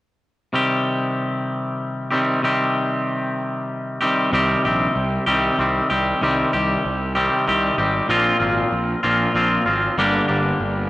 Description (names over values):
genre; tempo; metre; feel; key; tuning
rock; 64 BPM (dotted quarters); 6/8; straight; C minor; A4 = 440 Hz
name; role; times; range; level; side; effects
twangy electric guitar; riff; 0.5-10.9 s; G2 to G4; -18 LUFS; equal; spring reverb
fuzz picked electric bass; bass; 4.3-10.9 s; G1 to C2; -25 LUFS; right 1 dB; overdrive
room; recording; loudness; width
light reverb; home recording on cassette; -18 LUFS; side -17 dB against mid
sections
0.5-4.3 A section; 4.3-10.9 B section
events
none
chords
0.5 Cm; 8.1 Bbsus2; 10.0 Gm